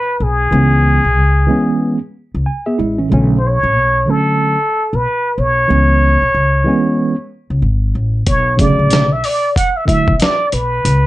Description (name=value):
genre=hip hop, jazz-hop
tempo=93 BPM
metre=4/4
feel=swing 62% on 16ths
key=B dorian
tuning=A4 = 435 Hz
part: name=trumpet with plunger mute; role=melody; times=0.0-11.1 s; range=G#4 to F#5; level=-15 LUFS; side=equal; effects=none
part: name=upright bass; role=bass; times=0.2-11.1 s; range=G#1 to C#2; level=-15 LUFS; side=equal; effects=none
part: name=tine electric piano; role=accompaniment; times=0.5-10.1 s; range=C#3 to G#5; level=-15 LUFS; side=right 2 dB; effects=medium stereo tremolo
part: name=dusty soul sampler-style drum kit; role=drums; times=8.3-11.0 s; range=hi-hat, kick drum, snare drum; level=-16 LUFS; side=equal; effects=overdrive
room=light reverb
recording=dark, warm production, nothing above 10.7 kHz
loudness=-12 LUFS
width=side -16 dB against mid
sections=0.0-11.1 A section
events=tine electric piano fill 2.1-3.1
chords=0.0 N.C.; 0.5 C#m7; 3.1 Bm9; 5.7 C#m7; 8.3 Bm9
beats=| 0.53 1.18 1.82 2.46 | 3.11 3.75 4.40 5.05 | 5.69 6.34 6.98 7.63 | 8.27 8.92 9.56 10.21 | 10.85